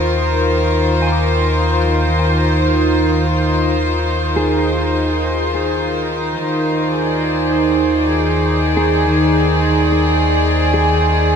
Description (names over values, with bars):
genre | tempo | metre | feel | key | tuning
ambient | free time | none | none | unclear | A4 = 440 Hz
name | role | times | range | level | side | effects
rich studio string section | sustained chords | 0.0-11.4 s | Eb3 to D5 | -15 LUFS | equal | none
mellow electric guitar | arpeggios | 0.0-11.4 s | Ab4 to D6 | -26 LUFS | left 2 dB | none
warm sub bass | bass | 0.0-11.4 s | Eb2 | -20 LUFS | equal | none
room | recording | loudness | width
wet huge ambient reverb, RT60 7.7 s | dreamy mix soaked in reverb | -13 LUFS | side -7 dB against mid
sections
0.0-11.4 A section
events
none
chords
0.0 Ab6/Eb